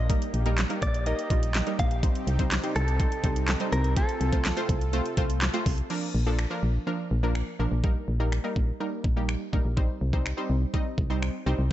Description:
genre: dance-pop.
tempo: 124 BPM.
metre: 4/4.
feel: straight.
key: Bb major.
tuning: A4 = 439 Hz.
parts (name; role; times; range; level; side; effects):
direct-recorded clean electric guitar; melody; 0.0-5.4 s; A4 to F5; -34 LUFS; right 1 dB; spring reverb, dub echo.
soft supersaw; sustained chords; 0.0-5.9 s; C3 to A4; -37 LUFS; equal; sidechain pumping.
solid FM bass; bass; 0.0-11.7 s; Bb1 to C2; -26 LUFS; equal; sidechain pumping.
analog pluck; accompaniment; 0.1-11.6 s; F3 to Eb5; -32 LUFS; right 1 dB; chorus, sidechain pumping.
pop drum kit; drums; 0.1-11.3 s; crash cymbal, finger snaps, handclaps, hi-hat, kick drum, snare drum; -28 LUFS; equal; overdrive.
room: little or no reverb.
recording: echo-heavy mix, nothing above 8.0 kHz.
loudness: -24 LUFS.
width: side -13 dB against mid.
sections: 0.0-5.9 A section; 5.9-11.7 B section.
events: none.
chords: 0.1 Eb/Bb; 2.0 Cm; 4.0 F/C; 5.9 Bb; 7.8 Eb/Bb; 9.8 Cm.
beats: | 0.10 0.58 1.06 1.55 | 2.03 2.51 3.00 3.48 | 3.97 4.45 4.93 5.42 | 5.90 6.38 6.87 7.35 | 7.84 8.32 8.80 9.29 | 9.77 10.26 10.74 11.22 | 11.71.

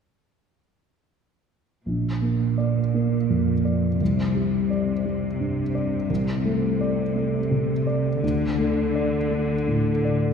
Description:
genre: cinematic, emotional film score for orchestra.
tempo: 56 BPM (dotted quarters).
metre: 6/8.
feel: rubato.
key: Bb major.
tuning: A4 = 443 Hz.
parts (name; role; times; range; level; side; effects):
dark grand piano; accompaniment; 1.9-10.3 s; Bb1 to D5; -22 LUFS; equal; none.
rich symphonic cello section; bass; 1.9-10.2 s; Bb2 to D3; -27 LUFS; right 2 dB; none.
room: wet concert hall reverb, RT60 2.1 s.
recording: recorded in a church or concert hall.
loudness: -21 LUFS.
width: side -6 dB against mid.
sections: 1.9-10.3 A section.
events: none.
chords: 1.9 Bb; 4.0 Csus2; 6.1 Amadd11/C; 8.2 D5.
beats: | 1.86 2.95 | 4.01 5.05 | 6.09 7.15 | 8.22 9.31.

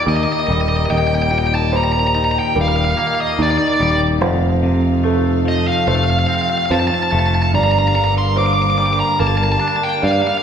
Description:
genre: rock.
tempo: 72 BPM.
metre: 4/4.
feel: straight.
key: Eb lydian.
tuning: A4 = 440 Hz.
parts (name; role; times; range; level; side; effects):
dark symphonic string section; sustained chords; 0.0-10.4 s; Eb3 to F5; -26 LUFS; equal; none.
felt-muted upright piano; arpeggios; 0.0-10.4 s; Eb4 to D6; -24 LUFS; right 3 dB; none.
twangy electric guitar; arpeggios; 0.0-10.4 s; Eb2 to D4; -21 LUFS; left 1 dB; none.
overdriven electric guitar; melody; 0.1-10.4 s; D5 to D6; -18 LUFS; equal; none.
picked electric bass; bass; 0.1-10.2 s; Eb1 to G2; -19 LUFS; equal; none.
room: wet recital hall reverb, RT60 1.6 s.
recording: recorded in a church or concert hall.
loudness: -14 LUFS.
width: side -8 dB against mid.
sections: 0.0-10.4 A section.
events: none.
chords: 0.0 Ebmaj7; 4.2 F7; 7.5 Gm7.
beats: 0.06 | 0.89 1.72 2.55 3.38 | 4.22 5.05 5.88 6.71 | 7.54 8.37 9.19 10.02.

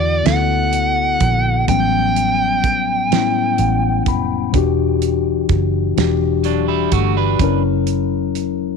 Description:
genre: slow six-eight R&B.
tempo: 42 BPM (dotted quarters).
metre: 6/8.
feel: straight.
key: unclear.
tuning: A4 = 440 Hz.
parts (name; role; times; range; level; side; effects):
bluesy overdriven lead guitar; melody; 0.0-4.0 s; D5 to G5; -18 LUFS; right 3 dB; distortion, tape echo.
mellow tine electric piano; accompaniment; 0.0-8.8 s; A2 to B5; -19 LUFS; left 13 dB; slow stereo tremolo.
vintage muted fingered electric bass; bass; 0.0-8.8 s; E1 to E2; -20 LUFS; right 2 dB; none.
cloth-damped thuddy drum kit; drums; 0.3-8.6 s; hi-hat, kick drum, snare drum; -20 LUFS; right 6 dB; none.
electric guitar at the edge of break-up; second line; 6.4-7.6 s; F#3 to B4; -22 LUFS; right 17 dB; none.
room: light reverb, small room ambience.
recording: 1960s-style stereo with parts hard left and right.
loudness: -14 LUFS.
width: side -5 dB against mid.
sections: 0.0-8.8 A section.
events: tine electric piano fill 3.1-4.5.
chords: 0.0 D69; 1.7 A13; 4.5 Em9; 7.4 F#7.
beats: 0.26 | 1.68 3.11 | 4.54 5.97 | 7.40.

